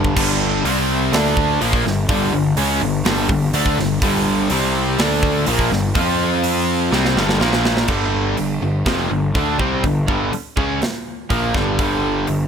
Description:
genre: hard rock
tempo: 124 BPM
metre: 4/4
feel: straight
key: unclear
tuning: A4 = 440 Hz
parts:
  - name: biting overdriven guitar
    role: riff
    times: 0.0-12.5 s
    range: F2 to F4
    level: -22 LUFS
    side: left 9 dB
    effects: none
  - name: distorted electric guitar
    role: riff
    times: 0.0-12.5 s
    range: F2 to F4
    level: -23 LUFS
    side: right 1 dB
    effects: overdrive
  - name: overdriven semi-hollow guitar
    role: riff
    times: 0.0-12.5 s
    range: F2 to F4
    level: -23 LUFS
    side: right 12 dB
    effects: none
  - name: fuzz picked electric bass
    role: bass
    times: 0.0-12.5 s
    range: F1 to F2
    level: -22 LUFS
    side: equal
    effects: overdrive
  - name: tight metal drum kit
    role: drums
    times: 0.0-12.4 s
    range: crash cymbal, hi-hat, kick drum, snare drum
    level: -23 LUFS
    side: right 1 dB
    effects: none
room: light reverb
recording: none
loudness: -16 LUFS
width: side -7 dB against mid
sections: 0.2-7.9 A section; 7.9-12.5 B section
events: drum fill 0.0, 6.9-7.9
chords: 0.2 G5; 0.6 C5; 1.1 D5; 1.6 G5; 4.5 C5; 5.0 D5; 5.5 G5; 6.0 F5; 6.9 G5; 7.4 Bb5; 7.9 G5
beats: | 0.16 0.65 1.13 1.61 | 2.09 2.57 3.06 3.54 | 4.02 4.50 4.99 5.47 | 5.95 6.44 6.92 7.41 | 7.89 8.38 8.87 9.35 | 9.84 10.33 10.82 11.30 | 11.79 12.28

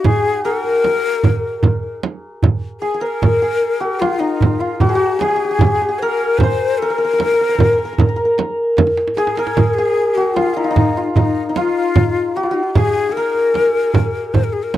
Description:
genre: Persian modal ensemble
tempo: 76 BPM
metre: 4/4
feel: straight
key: unclear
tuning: A4 = 439 Hz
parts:
  - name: santur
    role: melody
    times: 0.0-14.8 s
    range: Eb4 to C5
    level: -18 LUFS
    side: equal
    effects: none
  - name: breathy bright ney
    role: second line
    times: 0.0-14.7 s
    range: Eb4 to C5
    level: -19 LUFS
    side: left 6 dB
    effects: none
  - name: frame drum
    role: percussion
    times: 0.0-14.8 s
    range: none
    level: -18 LUFS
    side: right 3 dB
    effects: none
  - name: tombak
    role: percussion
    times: 0.0-14.6 s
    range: none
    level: -18 LUFS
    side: right 2 dB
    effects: none
room: light reverb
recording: dry, close 1970s-style studio recording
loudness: -14 LUFS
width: side -13 dB against mid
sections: 0.0-14.8 A section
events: drum fill 8.8-9.6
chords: none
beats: | 0.04 0.84 1.63 2.42 | 3.22 4.01 4.80 5.60 | 6.39 7.19 7.98 8.78 | 9.57 10.37 11.16 11.95 | 12.75 13.54 14.34

